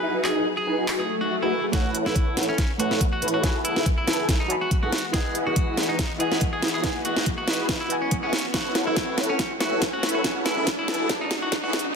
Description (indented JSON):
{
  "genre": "future bass",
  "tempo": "141 BPM",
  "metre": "4/4",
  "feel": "swing 54% on 16ths, half-time",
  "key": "E major",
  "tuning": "A4 = 440 Hz",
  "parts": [
    { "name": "clean electric guitar", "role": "melody", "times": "0.0-11.9 s", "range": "C#4 to B4", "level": "-29 LUFS", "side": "equal", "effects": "vintage 12-bit sampler grit, sidechain pumping, digital delay" },
    { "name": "clear symphonic string section", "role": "sustained chords", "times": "0.0-12.0 s", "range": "E3 to D#5", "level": "-37 LUFS", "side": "left 3 dB", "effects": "sidechain pumping" },
    { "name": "thumb-piano-like synth pluck", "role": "arpeggios", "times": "0.0-1.7, 8.5-11.9 s", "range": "C#4 to A4", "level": "-35 LUFS", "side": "equal", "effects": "none" },
    { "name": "supersaw chords", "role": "riff", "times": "0.0-11.7 s", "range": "D#4 to B5", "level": "-27 LUFS", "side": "equal", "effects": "ensemble chorus, sidechain pumping, low-pass filter" },
    { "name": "trap drum kit", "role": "drums", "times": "0.2-11.9 s", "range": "finger snaps, handclaps, hi-hat, snare drum", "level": "-27 LUFS", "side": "equal", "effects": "soft clipping on snare, small room ambience" },
    { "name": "swell and riser", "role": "sound effects", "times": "1.0-12.0 s", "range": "none", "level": "-33 LUFS", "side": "equal", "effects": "none" },
    { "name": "soft round pluck", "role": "accompaniment", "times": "1.7-8.5 s", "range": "A3 to B5", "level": "-30 LUFS", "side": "right 1 dB", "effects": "wide subtle chorus, sidechain pumping, digital delay" },
    { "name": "warm 808-style bass", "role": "bass", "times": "1.7-11.7 s", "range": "E1 to F#2", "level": "-41 LUFS", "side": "equal", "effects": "none" },
    { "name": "electronic kick drum", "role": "drums", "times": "1.7-11.6 s", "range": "none", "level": "-25 LUFS", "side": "equal", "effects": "overdrive, small room ambience" }
  ],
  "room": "moderate digital room reverb, RT60 1.1 s, digital ambience",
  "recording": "dense, heavily limited modern master, high-pass filter",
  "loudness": "-21 LUFS",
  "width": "side -5 dB against mid",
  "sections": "0.0-1.7 A section; 1.7-12.0 B section",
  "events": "swell 1.0-1.7; build-up 1.7-12.0; drum fill 1.7-12.0; filter sweep on supersaw synth 1.7-12.0; riser 3.6-12.0",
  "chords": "0.0 Emaj9; 1.7 A69; 3.4 F#m11; 5.1 Emaj9; 8.5 A69; 10.2 F#m11"
}